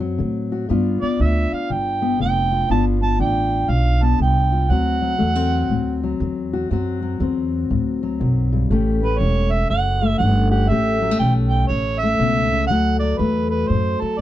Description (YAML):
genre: acoustic country blues, solo or duo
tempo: 120 BPM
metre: 4/4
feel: swing 64% on 8ths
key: D mixolydian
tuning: A4 = 440 Hz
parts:
  - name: fingerpicked steel-string acoustic guitar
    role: accompaniment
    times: 0.0-14.2 s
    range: D2 to G4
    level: -22 LUFS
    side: left 5 dB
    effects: none
  - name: upright bass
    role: bass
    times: 0.0-14.1 s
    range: E1 to A2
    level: -20 LUFS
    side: right 1 dB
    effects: none
  - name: mellow harmonica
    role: melody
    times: 1.0-14.2 s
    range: A4 to A5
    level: -22 LUFS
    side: right 4 dB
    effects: none
room: little or no reverb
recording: dark, warm production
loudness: -17 LUFS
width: side -13 dB against mid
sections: 0.0-14.2 A section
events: none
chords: 0.0 D7; 0.7 G7; 4.7 D7; 8.7 A7; 12.7 D